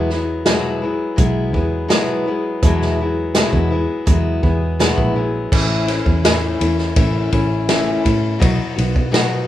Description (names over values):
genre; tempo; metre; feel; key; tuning
folk rock and heartland rock; 83 BPM; 4/4; straight; A major; A4 = 439 Hz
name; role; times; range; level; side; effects
picked steel-string acoustic guitar; accompaniment; 0.0-9.5 s; E2 to F#4; -19 LUFS; left 3 dB; none
fingered electric bass; bass; 0.0-9.5 s; A1 to B2; -20 LUFS; right 1 dB; none
vintage drum kit; drums; 0.1-9.3 s; crash cymbal, hi-hat, kick drum, ride cymbal, snare drum; -18 LUFS; right 1 dB; none
room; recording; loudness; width
little or no reverb; rough home demo mix, small room ambience, faint mains hum; -15 LUFS; side -13 dB against mid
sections
0.0-5.5 A section; 5.5-9.5 B section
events
none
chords
0.0 Eadd9; 5.5 A; 8.4 B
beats
0.46 1.18 1.91 | 2.63 3.35 4.08 4.80 | 5.52 6.25 6.97 7.69 | 8.41 9.14